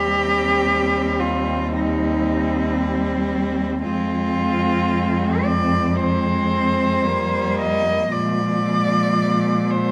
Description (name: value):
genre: classical, lyrical piece for cello ensemble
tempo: 56 BPM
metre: 4/4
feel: rubato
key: C minor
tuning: A4 = 445 Hz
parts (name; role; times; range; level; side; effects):
- rich cello; melody; 0.0-9.9 s; Eb4 to Eb5; -24 LUFS; equal; none
- rich cello; second line; 0.0-9.9 s; Ab3 to C4; -27 LUFS; equal; none
- warm cello; accompaniment; 0.0-9.9 s; F3 to Ab3; -27 LUFS; equal; none
- rich cello; bass; 0.0-9.9 s; Eb2 to Bb2; -26 LUFS; equal; none
room: wet recital hall reverb, RT60 1.4 s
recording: none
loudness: -20 LUFS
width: mono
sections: 0.0-9.9 A section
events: none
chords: 0.0 Cm/Eb; 3.8 Fm; 8.1 Bb7